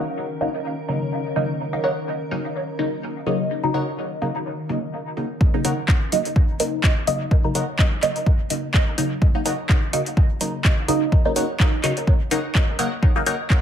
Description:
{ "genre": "dub techno", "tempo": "126 BPM", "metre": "4/4", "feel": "swing 55% on 16ths", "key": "Eb minor", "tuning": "A4 = 441 Hz", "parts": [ { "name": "granular cloud pad", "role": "sustained chords", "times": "0.0-5.4 s", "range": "Eb3 to Bb4", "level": "-31 LUFS", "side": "left 1 dB", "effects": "built-in reverb, sidechain pumping" }, { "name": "filtered dub chord stab", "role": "stabs", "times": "0.4-13.3 s", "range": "Db3 to Eb4", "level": "-23 LUFS", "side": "equal", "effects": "phaser, sidechain pumping, dub echo" }, { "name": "deep house drum kit", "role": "drums", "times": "0.4-13.6 s", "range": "handclaps, hi-hat", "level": "-26 LUFS", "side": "equal", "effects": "overdrive, low-pass filter on hats, low-pass filter on snare, low-pass filter on room" }, { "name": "wavetable chord stab", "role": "riff", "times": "1.8-13.4 s", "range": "Bb4 to Gb5", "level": "-32 LUFS", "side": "left 1 dB", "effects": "sidechain pumping, dub echo" }, { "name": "electronic kick drum", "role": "drums", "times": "5.4-13.6 s", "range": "none", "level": "-17 LUFS", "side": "equal", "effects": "overdrive" } ], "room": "light reverb, digital ambience", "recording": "low-pass filter", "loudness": "-19 LUFS", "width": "side -9 dB against mid", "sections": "0.0-5.4 A section; 5.4-13.6 B section", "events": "none", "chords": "0.0 Ebm7" }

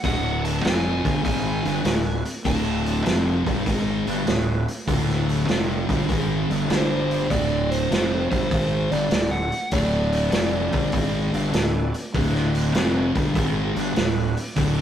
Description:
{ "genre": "blues rock power trio and southern rock", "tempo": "99 BPM", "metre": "4/4", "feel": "swing 67% on 8ths", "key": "D major", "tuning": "A4 = 441 Hz", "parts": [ { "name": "overdriven slide guitar", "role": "melody", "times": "0.0-14.8 s", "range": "C5 to A5", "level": "-29 LUFS", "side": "right 1 dB", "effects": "none" }, { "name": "tonewheel organ", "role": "sustained chords", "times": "0.0-14.8 s", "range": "G3 to D5", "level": "-35 LUFS", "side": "right 3 dB", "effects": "overdrive, fast rotary speaker" }, { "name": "thick fuzz guitar", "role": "riff", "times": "0.0-14.8 s", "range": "D2 to G#3", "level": "-24 LUFS", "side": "equal", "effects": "distortion" }, { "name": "fuzz fingered electric bass", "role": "bass", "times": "0.0-14.8 s", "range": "D1 to G#1", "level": "-27 LUFS", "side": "equal", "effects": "overdrive" }, { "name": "vintage drum kit", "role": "drums", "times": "0.0-14.8 s", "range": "hi-hat, kick drum, snare drum", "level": "-25 LUFS", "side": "right 1 dB", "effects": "none" } ], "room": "moderate studio reverb, RT60 0.6 s", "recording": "rough rehearsal-room recording, tube saturation", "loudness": "-20 LUFS", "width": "side -10 dB against mid", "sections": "0.0-14.8 A section", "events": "none", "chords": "0.0 D; 6.7 G5; 7.3 D" }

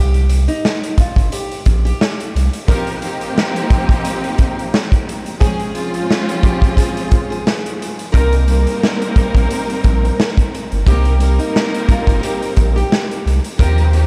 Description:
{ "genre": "hip hop, boom-bap hip-hop", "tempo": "88 BPM", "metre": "4/4", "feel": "swing 56% on 16ths", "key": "C phrygian", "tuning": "A4 = 442 Hz", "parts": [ { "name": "nylon-string guitar", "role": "melody", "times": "0.0-14.1 s", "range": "Eb4 to Bb4", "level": "-29 LUFS", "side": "equal", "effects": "lush chorus, high-pass filter, low-pass filter, analog delay" }, { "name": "saturated sub bass", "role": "bass", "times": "0.0-2.5, 8.1-14.1 s", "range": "G1 to Eb2", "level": "-16 LUFS", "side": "equal", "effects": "none" }, { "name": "raw garage drum kit", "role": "drums", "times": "0.1-14.1 s", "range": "hi-hat, kick drum, snare drum", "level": "-18 LUFS", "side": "equal", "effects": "none" }, { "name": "warm studio string section", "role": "accompaniment", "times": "2.7-14.1 s", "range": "F3 to Bb4", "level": "-23 LUFS", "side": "equal", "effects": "high-pass filter, low-pass filter" }, { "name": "clear saxophone section", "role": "stabs", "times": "2.7-3.1, 8.1-8.3, 13.6-14.0 s", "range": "Eb4 to Bb4", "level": "-32 LUFS", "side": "equal", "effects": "none" } ], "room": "light reverb, studio ambience", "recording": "none", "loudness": "-16 LUFS", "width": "mono", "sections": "0.0-14.1 A section", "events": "break 0.0-2.7", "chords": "0.0 C7(no3); 2.7 Eb69; 5.4 Dbmaj7; 8.1 Cm7" }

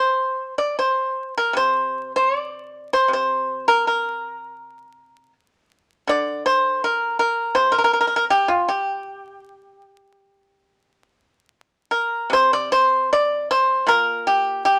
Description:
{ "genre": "chinese traditional, Chinese solo plucked strings", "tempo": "69-83 BPM", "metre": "4/4", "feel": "rubato", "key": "unclear", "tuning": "A4 = 442 Hz", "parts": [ { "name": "pipa", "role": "solo", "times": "0.0-14.8 s", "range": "Bb2 to D5", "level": "-20 LUFS", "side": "equal", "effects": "none" } ], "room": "moderate studio reverb, RT60 0.9 s", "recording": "vinyl crackle", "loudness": "-20 LUFS", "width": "mono", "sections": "0.0-12.3 A section; 12.3-14.8 B section", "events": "none", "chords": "none" }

